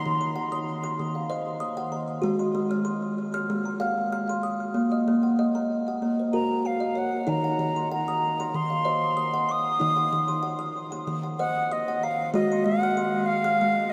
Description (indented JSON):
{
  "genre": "world meditative",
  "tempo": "95 BPM",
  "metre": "4/4",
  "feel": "straight",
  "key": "Eb kumoi",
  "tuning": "A4 = 440 Hz",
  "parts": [
    { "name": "reedy concert flute", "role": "melody", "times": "0.0-0.4, 6.3-13.9 s", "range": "Eb5 to Eb6", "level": "-29 LUFS", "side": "equal", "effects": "delay" },
    { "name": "kalimba", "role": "arpeggios", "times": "0.0-13.9 s", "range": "Eb3 to F6", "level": "-28 LUFS", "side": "equal", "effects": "delay" }
  ],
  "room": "wet huge ambient reverb, RT60 7.4 s",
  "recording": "dreamy mix soaked in reverb",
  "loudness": "-26 LUFS",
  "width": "mono",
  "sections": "0.0-13.9 A section",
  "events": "none",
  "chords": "0.0 Ebm; 2.2 Ab; 4.8 Bbm; 7.3 Ebm; 12.3 Ab",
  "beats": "0.36 0.99 1.62 | 2.25 2.87 3.50 4.13 | 4.76 5.39 6.02 6.65 | 7.28 7.91 8.54 9.18 | 9.81 10.44 11.07 11.71 | 12.34 12.98 13.61"
}